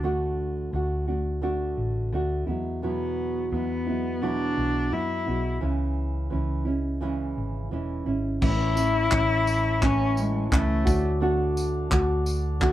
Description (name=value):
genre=acoustic pop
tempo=86 BPM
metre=4/4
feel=swing 60% on 16ths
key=A major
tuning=A4 = 439 Hz
part: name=nylon-string guitar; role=accompaniment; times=0.0-12.7 s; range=E2 to F#4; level=-28 LUFS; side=right 2 dB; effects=none
part: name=hollow-body short-scale fingered electric bass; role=bass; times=0.0-12.7 s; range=E1 to F#2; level=-28 LUFS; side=equal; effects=none
part: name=warm cello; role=melody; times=2.9-11.0 s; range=G#3 to E4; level=-27 LUFS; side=left 3 dB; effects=plate reverb
part: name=glass harmonica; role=sustained chords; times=8.4-12.7 s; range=E4 to D6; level=-37 LUFS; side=left 3 dB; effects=none
part: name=loose indie drum kit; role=drums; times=8.4-12.7 s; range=crash cymbal, handclaps, kick drum, tambourine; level=-26 LUFS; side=equal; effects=none
room=moderate small room reverb, RT60 0.5 s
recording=heard from further back in the room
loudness=-23 LUFS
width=side -13 dB against mid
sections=0.0-8.4 A section; 8.4-12.7 B section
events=none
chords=0.0 D; 2.5 Eadd9; 5.6 C#m; 8.4 A; 10.9 D